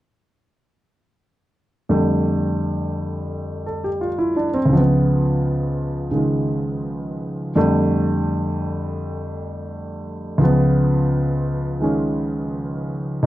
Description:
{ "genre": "solo jazz", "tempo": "85 BPM", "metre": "4/4", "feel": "swing 66% on 8ths", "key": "unclear", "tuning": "A4 = 445 Hz", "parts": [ { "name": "warm concert grand piano", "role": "solo", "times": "1.9-13.3 s", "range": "C2 to A4", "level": "-18 LUFS", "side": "equal", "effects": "none" } ], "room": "light reverb", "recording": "dry, close 1970s-style studio recording", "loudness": "-18 LUFS", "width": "side -15 dB against mid", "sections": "1.9-13.2 A section", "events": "none", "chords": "1.9 F69; 4.7 Db7; 7.6 F69; 10.4 Db7" }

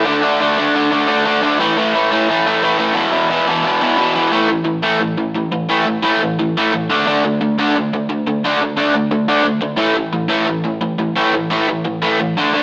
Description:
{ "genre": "punk", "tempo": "176 BPM", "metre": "4/4", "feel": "straight", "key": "unclear", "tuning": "A4 = 440 Hz", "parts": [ { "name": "crunchy overdriven guitar", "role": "solo", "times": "0.0-12.6 s", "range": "E2 to D4", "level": "-13 LUFS", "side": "equal", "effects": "none" } ], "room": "moderate stone room reverb, RT60 1.2 s", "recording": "rough rehearsal-room recording, warm saturation, small speaker sound", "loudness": "-13 LUFS", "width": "side -27 dB against mid", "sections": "0.0-4.3 A section; 4.3-12.6 B section", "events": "none", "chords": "0.1 D5; 1.6 A5; 3.0 E5; 4.3 A5; 6.9 D5; 9.8 A5" }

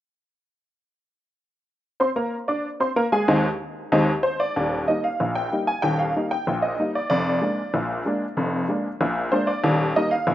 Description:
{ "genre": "ragtime piano", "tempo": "94 BPM", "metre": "2/4", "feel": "straight", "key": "Eb major", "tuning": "A4 = 440 Hz", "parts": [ { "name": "honky-tonk upright piano", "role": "solo", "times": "2.0-10.3 s", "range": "Eb1 to D6", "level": "-20 LUFS", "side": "equal", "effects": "none" } ], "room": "light reverb, studio reverb", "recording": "rough home demo mix, nothing above 7.8 kHz", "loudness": "-20 LUFS", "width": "side -13 dB against mid", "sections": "2.0-4.6 A section; 4.6-10.3 B section", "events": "none", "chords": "2.0 Bb9; 3.3 Ab/Eb; 4.6 Eb; 7.1 Bb7/F; 9.6 Eb" }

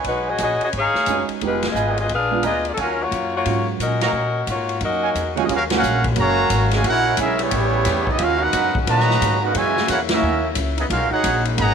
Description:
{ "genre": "jazz, big band swing", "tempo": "177 BPM", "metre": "4/4", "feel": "swing 64% on 8ths", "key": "Eb minor", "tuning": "A4 = 440 Hz", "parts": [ { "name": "warm trumpet section", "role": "stabs", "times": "0.0-5.4 s", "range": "Eb4 to Bb5", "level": "-28 LUFS", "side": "right 8 dB", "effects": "slapback echo" }, { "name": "upright bass", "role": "bass", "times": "0.0-11.7 s", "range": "F1 to Bb2", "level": "-24 LUFS", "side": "left 1 dB", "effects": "none" }, { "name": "swinging big-band drum kit", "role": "drums", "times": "0.0-11.7 s", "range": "hi-hat, kick drum, ride cymbal, snare drum", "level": "-27 LUFS", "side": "left 2 dB", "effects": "none" }, { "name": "bright saxophone section", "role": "melody", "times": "0.1-5.3 s", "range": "Gb3 to F5", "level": "-21 LUFS", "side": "left 3 dB", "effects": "none" }, { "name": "warm upright piano", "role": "accompaniment", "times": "1.1-5.5 s", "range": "Eb2 to G4", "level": "-26 LUFS", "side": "right 11 dB", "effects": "none" }, { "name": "warm trombone section", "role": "second line", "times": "4.8-11.7 s", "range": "Bb2 to Gb4", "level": "-24 LUFS", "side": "right 11 dB", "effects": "none" }, { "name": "clear trumpet section", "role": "melody", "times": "5.4-11.7 s", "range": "Cb4 to Bb5", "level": "-20 LUFS", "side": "equal", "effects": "none" }, { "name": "warm saxophone section", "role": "sustained chords", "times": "5.5-11.7 s", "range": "Db3 to G4", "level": "-28 LUFS", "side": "left 12 dB", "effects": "none" } ], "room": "light reverb, small room ambience", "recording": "1960s-style stereo with parts hard left and right", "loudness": "-17 LUFS", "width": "side -7 dB against mid", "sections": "0.0-5.5 A section; 5.5-11.7 B section", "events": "band accent 1.6, 4.0, 5.7, 10.1", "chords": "0.1 B69; 1.4 Fm7b5; 2.1 Bb7b9; 2.8 Ebm11; 6.8 Bbm7b5; 7.5 A9; 8.2 Abm11; 9.5 Gb7; 10.9 B69" }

